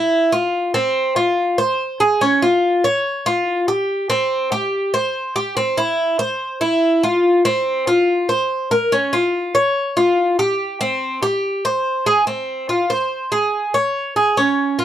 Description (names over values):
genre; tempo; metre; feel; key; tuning
latin; 143 BPM; 4/4; straight; F minor; A4 = 442 Hz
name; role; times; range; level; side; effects
Cuban tres; solo; 0.0-14.8 s; C4 to Db5; -16 LUFS; equal; none
room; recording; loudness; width
light reverb; dry, close 1970s-style studio recording; -16 LUFS; side -11 dB against mid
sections
0.0-12.3 A section; 12.3-14.8 B section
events
none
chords
none